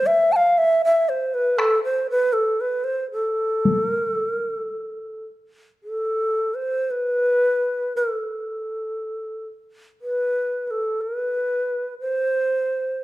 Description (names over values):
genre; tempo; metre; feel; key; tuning
japanese traditional, Japanese chamber music; 53-62 BPM; 4/4; rubato; A hirajoshi; A4 = 440 Hz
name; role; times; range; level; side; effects
long shakuhachi; melody; 0.0-13.0 s; A4 to A5; -20 LUFS; equal; none
taiko ensemble; percussion; 1.6-3.9 s; none; -23 LUFS; left 2 dB; none
room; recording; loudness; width
moderate recital hall reverb, RT60 1.7 s; dark, warm production; -20 LUFS; side -17 dB against mid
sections
0.0-5.8 A section; 5.8-13.0 B section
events
none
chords
none